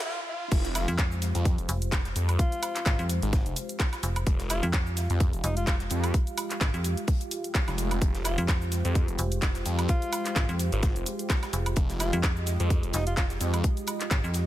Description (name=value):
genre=bass house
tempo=128 BPM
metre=4/4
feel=swing 55% on 16ths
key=F minor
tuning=A4 = 436 Hz
part: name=breathy alto saxophone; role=melody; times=0.0-13.3 s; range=Eb4 to F4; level=-37 LUFS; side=left 1 dB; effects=tape echo
part: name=garage drum kit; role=drums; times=0.0-14.4 s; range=cabasa, crash cymbal, handclaps, hi-hat, snare drum, woodblock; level=-33 LUFS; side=equal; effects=none
part: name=riser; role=sound effects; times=0.0-0.5 s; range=none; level=-38 LUFS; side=right 2 dB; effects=none
part: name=dark analog pad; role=sustained chords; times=0.7-14.5 s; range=Ab3 to F5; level=-36 LUFS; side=right 1 dB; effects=chorus, sidechain pumping
part: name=phased detuned saw bass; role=bass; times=0.5-13.6 s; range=F1 to F2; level=-28 LUFS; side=equal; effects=phaser, tube saturation, sidechain pumping
part: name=deep reggae drum kit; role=drums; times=0.5-14.5 s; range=hi-hat, snare drum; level=-44 LUFS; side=left 4 dB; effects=none
part: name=electronic kick drum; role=drums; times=0.5-14.2 s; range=none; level=-26 LUFS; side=equal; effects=none
part: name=metallic FM bass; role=bass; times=0.9-14.5 s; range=F1 to F2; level=-28 LUFS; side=equal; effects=tube saturation, sidechain pumping
room=digital ambience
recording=high-pass filter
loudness=-25 LUFS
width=side -14 dB against mid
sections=0.5-14.5 A section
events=riser 0.0-0.5; break 0.0-0.5; drop 0.5-14.5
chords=0.0 N.C.; 0.5 Fmadd9